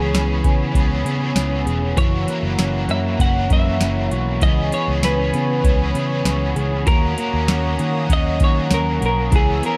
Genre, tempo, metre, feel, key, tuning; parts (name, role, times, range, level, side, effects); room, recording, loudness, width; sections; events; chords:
dream pop; 98 BPM; 4/4; straight; C# dorian; A4 = 440 Hz
semi-hollow electric guitar; melody; 0.0-9.8 s; G#4 to F#5; -27 LUFS; equal; analog chorus, digital delay
cranked stack guitar; accompaniment; 0.0-9.8 s; F#2 to G#4; -29 LUFS; equal; overdrive, harmonic tremolo, analog chorus
warm analog pad; sustained chords; 0.0-9.8 s; C#5 to E6; -31 LUFS; equal; chorus
clean electric guitar; arpeggios; 0.0-9.8 s; E3 to G#4; -27 LUFS; equal; lush chorus, digital delay
vintage muted picked electric bass; bass; 0.0-9.6 s; E1 to D#3; -24 LUFS; equal
booming analog drum machine; drums; 0.1-9.8 s; hi-hat, kick drum, snare drum, tambourine; -20 LUFS; equal
light reverb, digital ambience; dark, warm production; -19 LUFS; mono
0.0-9.8 A section
0.0 C#m7; 2.0 F#7; 4.4 C#m7; 6.9 D#m7